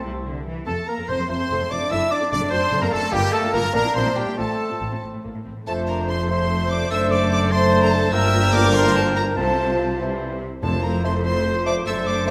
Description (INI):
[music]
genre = quick classical-period movement for symphony orchestra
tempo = 97 BPM (dotted quarters)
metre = 6/8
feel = rubato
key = F major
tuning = A4 = 440 Hz
[part]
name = warm chamber violin section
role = melody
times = 0.0-12.3 s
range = G5 to E6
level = -33 LUFS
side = equal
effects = none
[part]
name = clear oboe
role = second line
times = 0.0-12.3 s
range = G4 to A5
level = -31 LUFS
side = equal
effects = none
[part]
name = dark clarinet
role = second line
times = 0.0-12.3 s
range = G4 to E5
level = -31 LUFS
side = equal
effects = none
[part]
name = hollow concert flute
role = second line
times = 0.0-12.3 s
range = G5 to E6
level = -31 LUFS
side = equal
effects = none
[part]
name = rich chamber violin section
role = second line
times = 0.0-12.3 s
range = G4 to E5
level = -35 LUFS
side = equal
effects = none
[part]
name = dark studio viola section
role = accompaniment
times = 0.0-12.3 s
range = G3 to A4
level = -33 LUFS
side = equal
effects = none
[part]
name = warm bassoon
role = accompaniment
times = 0.0-12.3 s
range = E3 to D4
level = -32 LUFS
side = equal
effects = none
[part]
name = dark French horn section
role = sustained chords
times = 0.0-12.3 s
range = F3 to F4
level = -31 LUFS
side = equal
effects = none
[part]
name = bright trumpet section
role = stabs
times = 0.0-12.3 s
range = G4 to E5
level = -29 LUFS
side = equal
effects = none
[part]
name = clear chamber cello section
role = bass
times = 0.0-12.3 s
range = F2 to E3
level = -30 LUFS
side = equal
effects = none
[part]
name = rich chamber double bass section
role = bass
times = 0.0-12.3 s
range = F1 to C2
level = -29 LUFS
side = equal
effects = none
[part]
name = timpani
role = percussion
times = 10.6-11.2 s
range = F2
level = -32 LUFS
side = equal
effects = none
[sound]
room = wet scoring stage reverb, RT60 1.6 s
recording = none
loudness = -21 LUFS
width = mono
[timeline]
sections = 0.0-5.7 A section; 5.7-12.3 A section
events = none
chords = 0.0 C; 0.7 F; 1.9 D7/F#; 3.1 Gm7; 3.7 C7/Bb; 4.4 F/A (rootless); 5.7 F; 6.9 D7/F#; 8.1 Gm7; 9.4 F/C; 10.0 C; 10.6 F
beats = 0.04 | 0.67 1.29 | 1.91 2.52 | 3.13 3.74 | 4.38 5.03 | 5.67 6.30 | 6.91 7.52 | 8.13 8.75 | 9.37 10.01 | 10.63 11.25 | 11.87